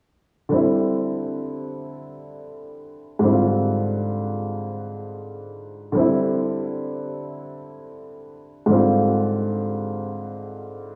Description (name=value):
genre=hip hop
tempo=free time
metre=none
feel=none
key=C major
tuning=A4 = 440 Hz
part: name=clear upright piano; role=accompaniment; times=0.5-11.0 s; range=Ab2 to F4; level=-24 LUFS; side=equal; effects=cassette tape, low-pass filter
room=wet plate reverb, RT60 2.6 s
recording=worn, warbling old tape, cassette tape, warbly pitch drift, low-pass filter, studio reverb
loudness=-23 LUFS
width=mono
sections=0.5-11.0 A section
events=none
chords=0.5 Cadd9; 3.2 Abmaj7; 6.0 Cadd9; 8.7 Abmaj7